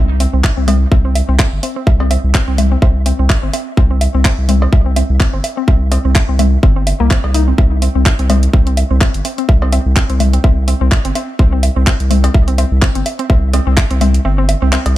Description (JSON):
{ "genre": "minimal techno", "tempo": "126 BPM", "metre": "4/4", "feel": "swing 56% on 16ths", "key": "unclear", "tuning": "A4 = 440 Hz", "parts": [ { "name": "mallet-like synth pluck", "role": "riff", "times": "0.0-14.8 s", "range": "Bb3 to Eb4", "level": "-21 LUFS", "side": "left 1 dB", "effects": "chorus, sidechain pumping, tape echo" }, { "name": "saturated sub bass", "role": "bass", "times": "0.0-15.0 s", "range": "G1 to C2", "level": "-13 LUFS", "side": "equal", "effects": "sidechain pumping" }, { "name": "garage drum kit", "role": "drums", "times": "0.2-14.9 s", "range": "handclaps, hi-hat", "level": "-21 LUFS", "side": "equal", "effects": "none" }, { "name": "woodblock, cowbell and congas", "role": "percussion", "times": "0.2-14.9 s", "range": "none", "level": "-22 LUFS", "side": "left 1 dB", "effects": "dub echo" }, { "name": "electronic kick drum", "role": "drums", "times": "0.4-13.9 s", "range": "none", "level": "-11 LUFS", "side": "equal", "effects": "none" } ], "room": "little or no reverb", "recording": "echo-heavy mix", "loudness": "-11 LUFS", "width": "side -15 dB against mid", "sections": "0.0-15.0 A section", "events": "filter sweep on synth arpeggio sound 0.0-15.0; kick drops out 14.2-15.0", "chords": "0.0 C5" }